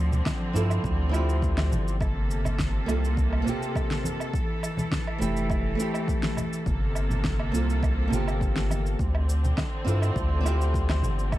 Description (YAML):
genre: sunset chillout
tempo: 103 BPM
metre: 4/4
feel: straight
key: G dorian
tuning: A4 = 440 Hz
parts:
  - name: clear symphonic string section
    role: sustained chords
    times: 0.0-11.4 s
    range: C3 to A4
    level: -32 LUFS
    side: equal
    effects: none
  - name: round analog bass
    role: bass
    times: 0.0-11.4 s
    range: F1 to G2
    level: -25 LUFS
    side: equal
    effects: none
  - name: electronic cabasa, snare drum and woodblock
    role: drums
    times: 0.1-11.4 s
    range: none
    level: -34 LUFS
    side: right 1 dB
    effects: overdrive
  - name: congas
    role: percussion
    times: 0.1-11.2 s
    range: none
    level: -34 LUFS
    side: right 1 dB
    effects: none
  - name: electronic kick drum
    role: drums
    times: 0.3-11.4 s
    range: none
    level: -30 LUFS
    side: equal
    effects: overdrive
  - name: nylon-string guitar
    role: accompaniment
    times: 0.5-11.3 s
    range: A3 to A4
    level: -32 LUFS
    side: moving between left 4 dB and right 5 dB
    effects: auto-pan, tape echo
room: studio ambience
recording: dark, warm production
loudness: -24 LUFS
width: side -15 dB against mid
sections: 0.0-11.4 A section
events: none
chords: 0.0 Dm7; 2.0 Gm11; 4.3 Fmaj7; 6.7 Gm11; 9.0 Dm7